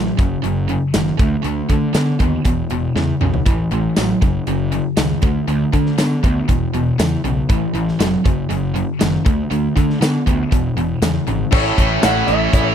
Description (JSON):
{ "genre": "classic rock", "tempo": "119 BPM", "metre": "4/4", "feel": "straight", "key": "unclear", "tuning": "A4 = 440 Hz", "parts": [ { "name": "distorted electric guitar", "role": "riff", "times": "0.0-12.7 s", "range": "E2 to A4", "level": "-22 LUFS", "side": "left 12 dB", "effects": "distortion" }, { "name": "overdriven electric guitar", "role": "riff", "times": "0.0-12.7 s", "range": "E2 to E4", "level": "-22 LUFS", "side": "right 13 dB", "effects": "none" }, { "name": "fuzz picked electric bass", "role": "bass", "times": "0.0-12.7 s", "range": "E1 to D3", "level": "-21 LUFS", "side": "equal", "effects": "overdrive" }, { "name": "big rock drum kit", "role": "drums", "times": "0.2-12.6 s", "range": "crash cymbal, hi-hat, kick drum, snare drum, tambourine, toms", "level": "-18 LUFS", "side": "equal", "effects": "none" }, { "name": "clear upright piano", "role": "accompaniment", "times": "11.5-12.7 s", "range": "C#4 to C#5", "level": "-27 LUFS", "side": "left 13 dB", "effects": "none" }, { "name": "fingerpicked twelve-string acoustic guitar", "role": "accompaniment", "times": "11.5-12.7 s", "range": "A3 to C#5", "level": "-28 LUFS", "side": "right 12 dB", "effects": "none" }, { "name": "tonewheel organ", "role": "sustained chords", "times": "11.5-12.7 s", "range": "C#4 to C#5", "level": "-30 LUFS", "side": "right 1 dB", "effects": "none" }, { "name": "cowbell", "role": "percussion", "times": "11.5-12.7 s", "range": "none", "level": "-28 LUFS", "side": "left 8 dB", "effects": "none" }, { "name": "clean lap steel guitar", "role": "melody", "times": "12.0-12.7 s", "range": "E5 to F#5", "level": "-20 LUFS", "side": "right 1 dB", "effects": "none" } ], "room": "little or no reverb", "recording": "dry, close 1970s-style studio recording", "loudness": "-15 LUFS", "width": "side -8 dB against mid", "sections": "0.0-11.5 A section; 11.5-12.7 B section", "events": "drum fill 3.0-3.5", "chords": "0.2 F#5; 1.2 D5; 2.5 E5; 3.5 A5; 4.2 F#5; 5.2 D5; 6.5 E5; 7.5 A5; 8.2 F#5; 9.3 D5; 10.5 E; 11.5 A" }